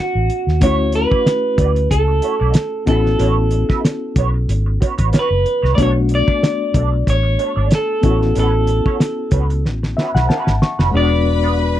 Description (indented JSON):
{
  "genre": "lush 1970s-style soul",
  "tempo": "93 BPM",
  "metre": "4/4",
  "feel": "swing 54% on 16ths",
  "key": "A major",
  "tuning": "A4 = 437 Hz",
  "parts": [
    { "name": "electric guitar through a small old amp", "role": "melody", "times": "0.0-11.8 s", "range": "F#4 to D5", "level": "-20 LUFS", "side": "right 1 dB", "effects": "none" },
    { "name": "mellow reed electric piano", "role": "accompaniment", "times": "0.0-11.8 s", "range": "G#3 to C#6", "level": "-22 LUFS", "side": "left 5 dB", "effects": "fast tremolo" },
    { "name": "vintage muted fingered electric bass", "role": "bass", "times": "0.2-11.8 s", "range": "E1 to D#2", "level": "-17 LUFS", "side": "equal", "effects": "none" },
    { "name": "cloth-damped thuddy drum kit", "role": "drums", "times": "0.3-10.9 s", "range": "hi-hat, kick drum, snare drum", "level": "-17 LUFS", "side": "equal", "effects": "none" },
    { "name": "electric guitar through a small old amp", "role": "riff", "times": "0.6-11.8 s", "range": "G#3 to E5", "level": "-24 LUFS", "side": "right 8 dB", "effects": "wah, analog chorus" },
    { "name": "warm studio violin section", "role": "second line", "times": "10.9-11.8 s", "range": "B4 to B5", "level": "-24 LUFS", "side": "left 2 dB", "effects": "none" }
  ],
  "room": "light reverb",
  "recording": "dry, close 1970s-style studio recording",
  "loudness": "-14 LUFS",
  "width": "side -12 dB against mid",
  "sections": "0.0-10.9 A section",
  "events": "drum fill 9.7-10.9; reed electric piano fill 9.7-10.9",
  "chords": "0.0 A69; 0.6 Dmaj9; 2.9 A69; 5.8 Bm9; 8.0 A69; 10.9 E9"
}